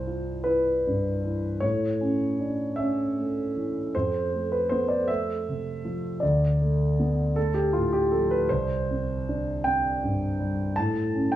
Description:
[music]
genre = neoclassical minimalist piano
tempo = 52 BPM (dotted quarters)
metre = 6/8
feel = rubato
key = C major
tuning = A4 = 441 Hz
[part]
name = dark concert grand piano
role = solo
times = 0.0-11.4 s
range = C2 to A5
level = -24 LUFS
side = equal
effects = none
[sound]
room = moderate spring reverb, RT60 1.4 s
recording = worn, warbling old tape, cassette tape, warbly pitch drift, small room ambience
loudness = -24 LUFS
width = side -13 dB against mid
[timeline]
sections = 0.0-11.4 A section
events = none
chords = 0.0 C; 1.6 A; 3.9 F; 6.2 Dm; 8.5 C5; 10.8 A

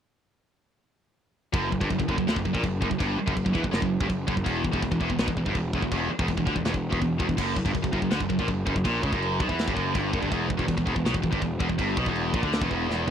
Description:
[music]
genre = heavy metal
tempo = 164 BPM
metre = 4/4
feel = straight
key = unclear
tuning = A4 = 440 Hz
[part]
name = high-gain distorted guitar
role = riff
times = 1.5-13.1 s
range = E2 to E3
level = -26 LUFS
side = equal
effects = distortion
[part]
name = fuzz picked electric bass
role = bass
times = 1.5-13.1 s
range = E1 to E2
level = -29 LUFS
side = equal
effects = overdrive
[part]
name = tight metal drum kit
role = drums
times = 1.5-13.1 s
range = china cymbal, crash cymbal, kick drum, snare drum, toms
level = -30 LUFS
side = equal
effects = none
[sound]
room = little or no reverb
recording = dry, close 1970s-style studio recording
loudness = -24 LUFS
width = side -8 dB against mid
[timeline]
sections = 1.5-13.1 A section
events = drum fill 12.9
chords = 1.5 N.C.; 4.5 E5; 7.4 F#; 10.3 E5

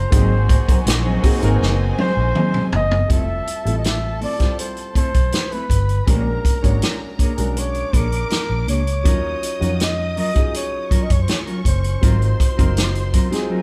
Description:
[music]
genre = lush 1970s-style soul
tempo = 81 BPM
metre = 4/4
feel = straight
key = unclear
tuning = A4 = 440 Hz
[part]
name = breathy flugelhorn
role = melody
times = 0.0-13.6 s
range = Bb4 to E5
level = -28 LUFS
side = equal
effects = none
[part]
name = muted studio string section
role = second line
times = 0.0-13.6 s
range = Db4 to Eb6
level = -35 LUFS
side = equal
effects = none
[part]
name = warm grand piano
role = accompaniment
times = 0.0-13.6 s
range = Gb3 to C#5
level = -30 LUFS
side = equal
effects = none
[part]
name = vintage muted fingered electric bass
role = bass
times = 0.0-13.2 s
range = F1 to Gb2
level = -23 LUFS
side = equal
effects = none
[part]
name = mellow electric guitar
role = riff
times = 0.1-13.6 s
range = Gb3 to C#5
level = -29 LUFS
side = equal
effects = spring reverb
[part]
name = warm horn section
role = stabs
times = 0.1-2.7 s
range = Eb3 to Gb4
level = -34 LUFS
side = equal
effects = none
[part]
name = vintage drum kit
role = drums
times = 0.1-13.5 s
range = hi-hat, kick drum, snare drum, toms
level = -21 LUFS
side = equal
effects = none
[sound]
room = light reverb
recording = band playing live in one room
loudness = -19 LUFS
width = mono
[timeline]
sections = 0.0-3.1 A section; 3.1-13.6 B section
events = drum fill 1.6-3.1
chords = 0.1 Ab7; 3.1 Fmaj7; 6.1 Bb7alt; 9.1 Ebm9; 12.0 Ab13

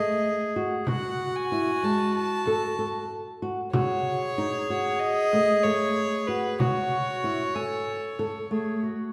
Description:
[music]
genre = contemporary instrumental, chamber music in an uneven meter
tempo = 189 BPM (eighths)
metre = 9/8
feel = straight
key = unclear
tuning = A4 = 440 Hz
[part]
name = warm violin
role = melody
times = 0.0-8.8 s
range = B4 to A5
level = -32 LUFS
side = equal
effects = none
[part]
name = mellow clarinet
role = second line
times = 0.0-9.1 s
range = F#4 to A4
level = -32 LUFS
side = equal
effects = none
[part]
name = flamenco guitar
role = arpeggios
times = 0.0-8.9 s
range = G#3 to G#5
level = -31 LUFS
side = equal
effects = none
[part]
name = frame drum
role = percussion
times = 0.9-9.0 s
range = none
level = -34 LUFS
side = equal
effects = none
[sound]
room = wet concert hall reverb, RT60 1.8 s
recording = recorded in a church or concert hall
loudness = -27 LUFS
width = mono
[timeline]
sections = 0.0-9.1 A section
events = none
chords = 0.0 B7 (rootless); 0.9 A5; 3.7 Amaj13; 6.6 A6

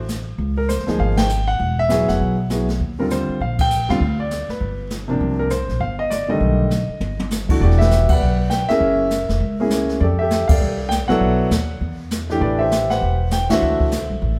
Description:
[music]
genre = jazz piano trio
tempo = 200 BPM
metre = 4/4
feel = swing 61% on 8ths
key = E minor from 7.6 s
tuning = A4 = 440 Hz
[part]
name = warm concert grand piano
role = melody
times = 0.0-14.4 s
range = C3 to G5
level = -22 LUFS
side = equal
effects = none
[part]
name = upright bass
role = bass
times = 0.0-14.4 s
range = E1 to F2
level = -24 LUFS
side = equal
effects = none
[part]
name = jazz brush drum kit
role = drums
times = 0.1-14.4 s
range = brushed snare drum, crash cymbal, hi-hat, kick drum, ride cymbal, snare drum, toms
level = -26 LUFS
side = equal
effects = none
[sound]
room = moderate large studio reverb, RT60 1.2 s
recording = band playing live in one room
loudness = -19 LUFS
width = mono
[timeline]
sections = 0.0-7.6 A section; 7.6-14.4 B section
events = band accent 1.1, 3.6, 8.1, 10.5, 13.5; drum fill 7.0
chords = 0.4 Dbmaj9; 1.6 Eadd9; 2.8 Eb69; 4.0 Dm; 4.6 G7; 5.2 Cm11; 6.4 B7alt; 7.6 Em9; 8.8 F#9; 10.0 F69; 11.2 Bm7; 11.8 N.C.; 12.4 Am9; 13.6 D9

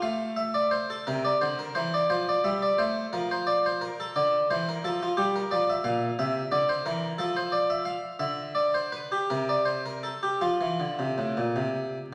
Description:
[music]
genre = classical, baroque-style suite movement for harpsichord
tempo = 52-60 BPM (dotted quarters)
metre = 6/8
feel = rubato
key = F major from 4.2 s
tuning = A4 = 443 Hz
[part]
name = harpsichord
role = solo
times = 0.0-12.0 s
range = A2 to F5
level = -28 LUFS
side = equal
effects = none
[sound]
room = wet recital hall reverb, RT60 1.6 s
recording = vinyl crackle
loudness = -28 LUFS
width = mono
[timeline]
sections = 0.0-12.1 A section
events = none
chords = 0.0 N.C.; 1.1 C; 2.1 F; 4.2 Dm; 5.2 Gm7; 6.2 C; 7.2 N.C.; 10.4 F5

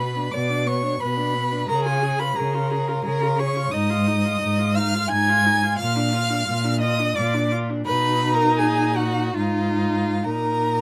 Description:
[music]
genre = classical, slow romantic movement for string quartet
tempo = 65-90 BPM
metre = 3/4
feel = rubato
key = unclear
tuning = A4 = 440 Hz
[part]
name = rich violin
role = melody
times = 0.0-10.8 s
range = F5 to Ab6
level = -26 LUFS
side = equal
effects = none
[part]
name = rich violin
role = second line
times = 0.0-10.8 s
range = F4 to Ab5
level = -29 LUFS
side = equal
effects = none
[part]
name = rich viola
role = accompaniment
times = 0.0-10.8 s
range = B3 to G#4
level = -30 LUFS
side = equal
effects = none
[part]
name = rich cello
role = bass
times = 0.0-10.8 s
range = Ab2 to C#3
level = -26 LUFS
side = equal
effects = none
[sound]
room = light reverb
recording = close, detailed microphones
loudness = -22 LUFS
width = mono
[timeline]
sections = 0.0-10.8 A section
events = none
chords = 0.0 Bm; 1.7 C#; 3.7 Fm7/Ab; 5.8 Bb; 7.9 B; 9.4 Fm7/Ab; 10.3 Eb5/Bb

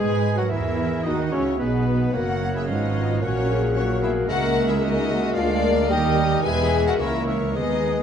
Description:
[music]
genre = quick classical-period movement for symphony orchestra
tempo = 111 BPM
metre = 2/4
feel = straight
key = unclear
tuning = A4 = 440 Hz
[part]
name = rich chamber violin section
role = melody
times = 0.0-8.0 s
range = B4 to G#5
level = -30 LUFS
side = left 6 dB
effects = none
[part]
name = bright oboe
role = second line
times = 0.0-8.0 s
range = B4 to G#5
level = -33 LUFS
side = right 1 dB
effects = none
[part]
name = mellow clarinet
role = second line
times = 0.0-8.0 s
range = B3 to C#5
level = -30 LUFS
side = left 2 dB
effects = none
[part]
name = rich chamber violin section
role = second line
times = 0.0-8.0 s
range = B3 to G#4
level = -33 LUFS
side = left 3 dB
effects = none
[part]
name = silver concert flute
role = second line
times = 0.0-8.0 s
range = D#4 to B4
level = -30 LUFS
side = left 1 dB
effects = none
[part]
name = mellow bassoon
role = accompaniment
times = 0.0-8.0 s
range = B2 to B3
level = -32 LUFS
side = equal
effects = none
[part]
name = rich chamber viola section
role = accompaniment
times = 0.0-8.0 s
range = E3 to G#4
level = -29 LUFS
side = right 1 dB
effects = none
[part]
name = dark French horn section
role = sustained chords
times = 0.0-8.0 s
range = E#4 to B4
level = -27 LUFS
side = left 5 dB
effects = none
[part]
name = rich studio cello section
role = bass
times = 0.0-8.0 s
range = C#2 to G#3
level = -28 LUFS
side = right 2 dB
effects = none
[part]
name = warm chamber double bass section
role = bass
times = 0.0-8.0 s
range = E1 to G#2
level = -26 LUFS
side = right 4 dB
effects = none
[sound]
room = moderate scoring stage reverb, RT60 1.5 s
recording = dark, warm production, nothing above 10.5 kHz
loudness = -19 LUFS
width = side -8 dB against mid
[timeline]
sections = 0.0-8.0 A section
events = none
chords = 0.0 B5; 0.5 E; 1.1 B; 2.1 F#; 2.7 C#7/G#; 3.2 F#/A#; 4.3 A#m7b5/C#; 5.4 A#7/D; 5.9 D#; 6.4 E; 7.0 A#dim/C#

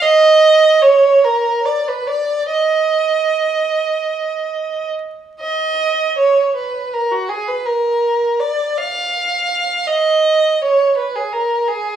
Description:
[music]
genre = classical, free, expressive piece for unaccompanied violin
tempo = 34-58 BPM (dotted quarters)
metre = 6/8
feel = rubato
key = unclear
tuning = A4 = 442 Hz
[part]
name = rich violin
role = solo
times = 0.0-12.0 s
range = Gb4 to F5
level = -13 LUFS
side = right 2 dB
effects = none
[sound]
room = moderate recital hall reverb, RT60 1.5 s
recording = vinyl crackle, small room ambience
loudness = -13 LUFS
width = side -9 dB against mid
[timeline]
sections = 0.0-5.4 A section; 5.4-12.0 B section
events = none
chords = none

